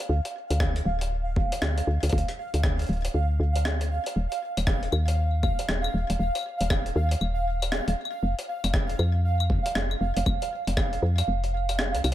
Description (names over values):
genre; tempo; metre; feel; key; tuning
IDM; 118 BPM; 4/4; swing 62% on 16ths; unclear; A4 = 441 Hz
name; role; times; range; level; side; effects
jungle sampler-style drum kit; drums; 0.0-12.1 s; claves, hi-hat, rim click; -32 LUFS; left 1 dB; overdrive
pulsing gated texture; texture; 0.0-12.1 s; F5; -32 LUFS; right 2 dB; chorus, built-in reverb
woody FM bass; bass; 0.1-12.1 s; D1 to F2; -25 LUFS; equal; tube saturation
electronic kick drum; drums; 0.6-10.9 s; none; -26 LUFS; equal; overdrive
room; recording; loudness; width
little or no reverb; none; -24 LUFS; side -13 dB against mid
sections
0.0-12.1 A section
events
none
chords
0.1 Dm; 4.2 Ebsus2; 8.2 F5